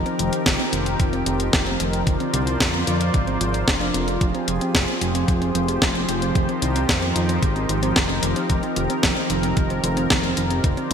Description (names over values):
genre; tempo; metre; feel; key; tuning
synthwave; 112 BPM; 4/4; straight; unclear; A4 = 441 Hz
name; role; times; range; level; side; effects
lush unison pad; sustained chords; 0.0-10.9 s; F3 to D5; -24 LUFS; left 1 dB; chorus, sidechain pumping
fat analog bass; bass; 0.0-10.9 s; F1 to F2; -25 LUFS; equal; sidechain pumping
thumb-piano-like synth pluck; arpeggios; 0.1-10.9 s; D3 to D4; -28 LUFS; right 3 dB; chorus, digital delay
clean 12-bit digital drum machine; drums; 0.1-10.9 s; hi-hat, snare drum; -24 LUFS; equal; gated reverb
electronic kick drum; drums; 0.5-10.7 s; none; -23 LUFS; equal; none
room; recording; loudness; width
moderate lush hall reverb, RT60 2.5 s; bright 1980s-style digital production; -18 LUFS; side -7 dB against mid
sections
0.0-10.9 A section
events
filter sweep on synth arpeggio sound 0.0-10.9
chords
0.0 Cm7/F; 2.1 Bbadd9/F; 4.2 Fmadd9; 6.4 Abmaj7/F; 8.5 Cm7/F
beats
0.46 1.00 1.53 | 2.07 2.60 3.14 3.67 | 4.21 4.75 5.28 5.82 | 6.35 6.89 7.42 7.96 | 8.50 9.03 9.57 10.10 | 10.64